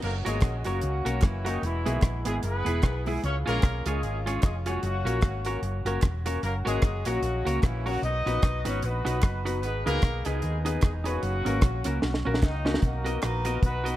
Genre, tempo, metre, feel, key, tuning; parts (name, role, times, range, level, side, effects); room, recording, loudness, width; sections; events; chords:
ska; 150 BPM; 4/4; swing 58% on 8ths; A4 = 441 Hz
dark horn section; melody; 0.0-14.0 s; D#3 to D#5; -32 LUFS; left 1 dB; analog delay
hollow-body short-scale fingered electric bass; bass; 0.0-14.0 s; E1 to D#2; -30 LUFS; equal
deep reggae drum kit; drums; 0.0-13.9 s; crash cymbal, hi-hat, kick drum, rim click, snare drum; -26 LUFS; equal
semi-hollow electric guitar; accompaniment; 0.2-14.0 s; B3 to D#5; -34 LUFS; right 4 dB; spring reverb, analog delay
dark upright piano; stabs; 0.3-14.0 s; G#3 to B4; -35 LUFS; left 4 dB; analog delay
group handclap; percussion; 0.4-13.3 s; -48 LUFS; right 6 dB
light reverb, small room ambience; -24 LUFS; side -14 dB against mid
0.0-12.8 A section; 12.8-14.0 B section
drum fill 12.0-12.8
0.0 F#; 1.6 E; 3.2 C#; 4.8 F#; 8.0 B; 9.6 G#m; 11.2 F#; 12.8 Bmaj7